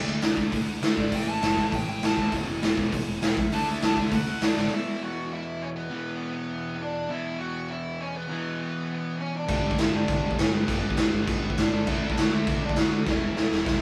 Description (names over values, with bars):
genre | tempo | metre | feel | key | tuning
punk rock | 201 BPM | 4/4 | straight | unclear | A4 = 441 Hz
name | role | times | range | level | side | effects
overdriven semi-hollow guitar | riff | 0.0-13.8 s | E2 to D4 | -34 LUFS | equal | none
thick fuzz guitar | riff | 0.0-4.7, 9.5-13.8 s | E2 to D4 | -38 LUFS | equal | none
growling picked electric bass | bass | 0.0-4.7, 9.5-13.8 s | E1 to D3 | -38 LUFS | equal | overdrive
raw garage drum kit | drums | 0.2-4.6, 9.5-13.7 s | crash cymbal, hi-hat, kick drum, snare drum | -27 LUFS | equal | none
smooth overdriven lead guitar | melody | 1.0-13.8 s | B3 to A5 | -35 LUFS | equal | tape echo
room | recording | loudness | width
light reverb | band playing live in one room | -27 LUFS | mono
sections
0.0-4.7 A section; 4.7-13.8 B section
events
lead electric guitar solo 0.0-4.7; drum fill 4.6, 13.1-13.8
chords
0.0 D5; 1.1 A5; 2.3 E5; 3.4 D; 4.7 E5; 9.5 G; 11.9 D; 13.1 E5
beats
0.22 0.52 0.82 | 1.12 1.42 1.73 2.02 | 2.33 2.62 2.92 3.22 | 3.52 3.82 4.12 4.42 | 4.72 5.02 5.32 5.62 | 5.91 6.21 6.51 6.81 | 7.11 7.41 7.70 8.00 | 8.30 8.60 8.89 9.19 | 9.49 9.79 10.09 10.39 | 10.68 10.98 11.28 11.58 | 11.88 12.18 12.47 12.77 | 13.07 13.37 13.67